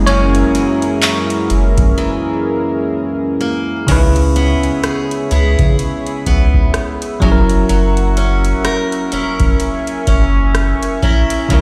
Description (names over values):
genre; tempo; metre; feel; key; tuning
contemporary R&B; 63 BPM; 4/4; swing 58% on 16ths; unclear; A4 = 440 Hz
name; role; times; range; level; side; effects
bell-like tine electric piano; accompaniment; 0.0-11.6 s; C#3 to C#5; -23 LUFS; equal; none
chorused pulse-width pad; sustained chords; 0.0-11.6 s; F#3 to C#6; -24 LUFS; equal; none
picked steel-string acoustic guitar; arpeggios; 0.0-11.6 s; F#2 to A#4; -22 LUFS; equal; tape echo
saturated sub bass; bass; 0.0-11.6 s; E1 to C#3; -17 LUFS; equal; none
large celesta; texture; 0.0-4.3 s; C#6; -33 LUFS; equal; tape echo
booming analog drum machine; drums; 0.1-11.6 s; crash cymbal, handclaps, hi-hat, kick drum, rim click; -18 LUFS; equal; none
room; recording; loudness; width
little or no reverb; played on a big sound system in a bare room, stone room reverb; -15 LUFS; mono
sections
0.0-3.9 A section; 3.9-11.6 B section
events
tine electric piano solo 0.0-3.9; break 2.0-3.9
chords
0.0 F#7; 3.9 C#m7; 7.2 F#7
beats
| 0.07 1.03 1.98 2.93 | 3.88 4.84 5.79 6.74 | 7.69 8.65 9.60 10.55 | 11.50